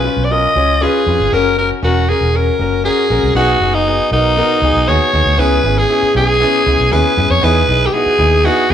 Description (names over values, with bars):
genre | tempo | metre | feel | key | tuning
uptempo 1960s-style soul | 118 BPM | 4/4 | straight | B major | A4 = 440 Hz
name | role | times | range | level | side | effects
raspy alto saxophone | melody | 0.0-8.7 s | D#4 to D#5 | -14 LUFS | equal | none
clear concert grand piano | accompaniment | 0.0-8.7 s | B3 to C#5 | -17 LUFS | left 2 dB | none
vintage muted fingered electric bass | bass | 0.0-8.7 s | E1 to F#2 | -17 LUFS | right 1 dB | none
room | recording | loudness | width
moderate large studio reverb, RT60 1.2 s | band playing live in one room | -11 LUFS | side -9 dB against mid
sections
0.0-3.4 A section; 3.4-8.7 B section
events
none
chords
0.0 C#7; 1.3 F#; 3.4 B6; 5.4 C#m7; 7.4 Emaj7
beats
0.30 0.81 | 1.32 1.83 2.34 2.85 | 3.36 3.86 4.37 4.88 | 5.39 5.90 6.41 6.91 | 7.42 7.93 8.44